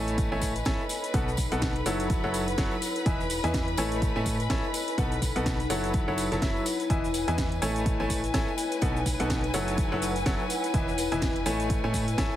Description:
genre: piano house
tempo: 125 BPM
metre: 4/4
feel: swing 58% on 16ths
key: unclear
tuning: A4 = 440 Hz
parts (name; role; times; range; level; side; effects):
- muted symphonic violin section; sustained chords; 0.0-12.4 s; B4 to B5; -36 LUFS; left 1 dB; sidechain pumping
- clear baby grand piano; riff; 0.0-12.3 s; B2 to A5; -30 LUFS; equal; sidechain pumping, tape echo
- organ-like FM bass; bass; 0.0-12.3 s; E1 to A2; -33 LUFS; equal; sidechain pumping
- warbly tape-like pad; texture; 0.0-12.4 s; A3 to G#5; -34 LUFS; left 2 dB; chorus, built-in reverb, sidechain pumping
- house drum kit; drums; 0.1-12.3 s; cabasa, hi-hat, snare drum; -35 LUFS; right 1 dB; none
- tambourine; percussion; 0.1-12.4 s; none; -42 LUFS; left 6 dB; none
- electronic kick drum; drums; 0.2-12.3 s; none; -29 LUFS; equal; none
room: light reverb, small room ambience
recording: heavily compressed radio sound, multiband compression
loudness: -25 LUFS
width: side -12 dB against mid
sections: 0.0-12.4 A section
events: none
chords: 0.2 Amaj7; 0.9 B7; 2.1 F#m7; 3.1 Emaj7; 4.0 Amaj7; 4.7 B7; 5.9 F#m7; 6.9 Emaj7; 7.9 Amaj7; 8.6 B7; 9.8 F#m7; 10.7 Emaj7; 11.7 Amaj7

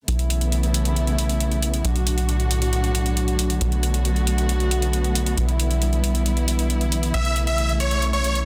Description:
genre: uplifting trance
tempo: 136 BPM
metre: 4/4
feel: straight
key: unclear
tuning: A4 = 440 Hz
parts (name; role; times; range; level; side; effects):
- dark chamber string section; sustained chords; 0.1-8.5 s; A2 to F#4; -28 LUFS; equal; none
- tight sequencer bass; bass; 0.1-8.5 s; B1; -24 LUFS; equal; tube saturation
- electronic hi-hat; drums; 0.1-8.4 s; none; -31 LUFS; equal; overdrive
- big supersaw lead; melody; 7.1-8.4 s; C#5 to E5; -25 LUFS; equal; dub echo
room: little or no reverb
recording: dense, heavily limited modern master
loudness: -22 LUFS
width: mono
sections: 0.1-8.5 A section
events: none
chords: 0.1 Aadd9/B; 1.8 Bm7; 5.4 Em7/B; 7.1 Aadd9/B

